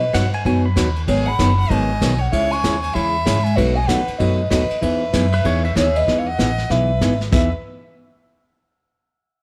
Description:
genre	country, western swing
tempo	192 BPM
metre	4/4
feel	swing 62% on 8ths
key	E major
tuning	A4 = 443 Hz
part	pure breathy sine lead	melody	0.0-7.5 s	B4 to C#6	-24 LUFS	equal	chorus, phaser
part	clear fiddle	second line	0.0-7.5 s	F#4 to G#5	-31 LUFS	equal	none
part	archtop guitar, miked and amplified	accompaniment	0.0-7.5 s	B2 to G#4	-24 LUFS	equal	none
part	upright bass	bass	0.0-7.5 s	F#1 to B2	-23 LUFS	equal	none
part	pedal steel guitar	second line	0.1-1.0, 5.3-7.5 s	B4 to B5	-30 LUFS	equal	none
part	vintage brush drum kit	drums	0.1-7.6 s	brushed snare drum, crash cymbal, hi-hat, kick drum, ride cymbal, snare drum	-28 LUFS	equal	none
room	light reverb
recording	none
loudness	-18 LUFS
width	mono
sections	0.0-6.1 A section; 6.1-7.3 B section; 7.3-8.6 C section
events	none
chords	0.0 B; 1.1 G#m7; 2.3 C#m; 3.6 B7; 4.8 Emaj7

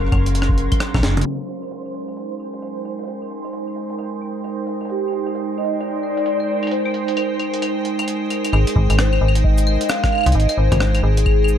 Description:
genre	IDM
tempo	132 BPM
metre	4/4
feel	swing 62% on 16ths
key	Ab major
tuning	A4 = 440 Hz
part	warbly nostalgic lead	melody	0.0-0.8, 4.9-11.6 s	G4 to F5	-23 LUFS	left 1 dB	phaser, wide subtle chorus, ping-pong delay
part	icy glass pad	sustained chords	0.0-11.6 s	Gb3 to G5	-24 LUFS	right 2 dB	chorus, built-in reverb
part	metallic FM bass	bass	0.0-1.2, 8.5-11.6 s	Gb1 to C2	-17 LUFS	equal	none
part	bubbling stepped-filter texture	texture	0.0-8.5 s	C5 to C6	-34 LUFS	right 4 dB	chorus, built-in reverb
part	electronic kick drum	drums	0.1-1.0, 8.8-11.4 s	none	-19 LUFS	equal	none
part	jungle sampler-style drum kit	drums	0.1-11.6 s	cabasa, claves, hi-hat, rim click, snare drum, toms	-26 LUFS	left 1 dB	none
room	light reverb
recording	dark, warm production, low-pass filter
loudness	-17 LUFS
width	side -9 dB against mid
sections	0.0-1.3 A section; 1.3-8.5 B section; 8.5-11.6 C section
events	drum fill 0.9-1.3; band accent 1.0; filter sweep on ambient pad 1.3-8.5; filter sweep 1.3-8.5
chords	0.0 Gbmaj7; 1.3 Abmaj7

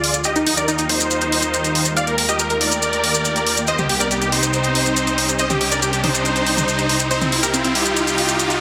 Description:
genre	uplifting trance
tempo	140 BPM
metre	4/4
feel	straight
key	C minor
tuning	A4 = 440 Hz
part	supersaw chords	melody	0.0-8.6 s	C4 to F5	-22 LUFS	equal	low-pass filter, delay
part	plucky unison lead	second line	0.0-8.6 s	C4 to F5	-29 LUFS	equal	delay
part	analog string pad	sustained chords	0.0-8.6 s	C2 to Ab4	-27 LUFS	equal	ensemble chorus
part	punchy analog drum machine	drums	0.0-8.6 s	hi-hat, toms	-24 LUFS	equal	none
part	riser	sound effects	0.5-8.6 s	none	-29 LUFS	equal	none
part	maracas	percussion	0.1-8.6 s	none	-26 LUFS	equal	none
room	light reverb, digital ambience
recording	dense, heavily limited modern master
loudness	-18 LUFS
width	mono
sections	0.0-8.6 A section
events	build-up 0.0-8.6; riser 0.5-8.6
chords	0.3 Ebadd9; 3.7 Cm

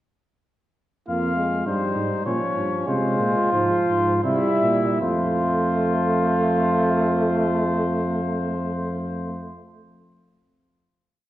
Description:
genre	classical, imitative canzona for brass ensemble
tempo	74-105 BPM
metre	3/4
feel	straight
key	unclear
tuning	A4 = 441 Hz
part	warm trumpet	melody	1.1-9.6 s	C5 to F5	-27 LUFS	left 4 dB	none
part	mellow flugelhorn	second line	1.1-9.6 s	Db4 to F4	-25 LUFS	right 2 dB	none
part	warm trombone	accompaniment	1.1-9.6 s	F3 to Bb3	-25 LUFS	right 1 dB	none
part	dark bass trombone	bass	1.1-9.6 s	F2 to C3	-26 LUFS	equal	none
room	wet recital hall reverb, RT60 1.8 s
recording	worn, warbling old tape, cassette tape, warbly pitch drift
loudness	-20 LUFS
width	side -14 dB against mid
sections	1.1-5.0 exposition; 5.0-9.9 final chord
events	slowing down 1.1-6.2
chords	1.1 Fm; 2.3 Bbm; 2.9 Fm; 4.2 C; 5.0 F

